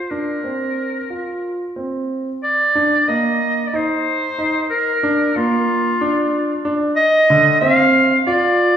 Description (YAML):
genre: contemporary instrumental, chamber music in an uneven meter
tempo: 184 BPM (eighths)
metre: 7/8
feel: straight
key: Bb major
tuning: A4 = 444 Hz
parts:
  - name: breathy clarinet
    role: melody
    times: 0.0-8.8 s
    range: F4 to F5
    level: -16 LUFS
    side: equal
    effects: none
  - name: warm grand piano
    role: arpeggios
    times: 0.1-8.8 s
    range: D3 to F4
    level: -19 LUFS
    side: right 1 dB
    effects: none
room: wet recital hall reverb, RT60 1.6 s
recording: heard from further back in the room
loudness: -15 LUFS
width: side -9 dB against mid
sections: 0.0-2.4 A section; 2.4-8.8 B section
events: none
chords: 0.1 Bbsus2; 2.4 Eb5/Bb; 4.7 Bb; 7.0 F5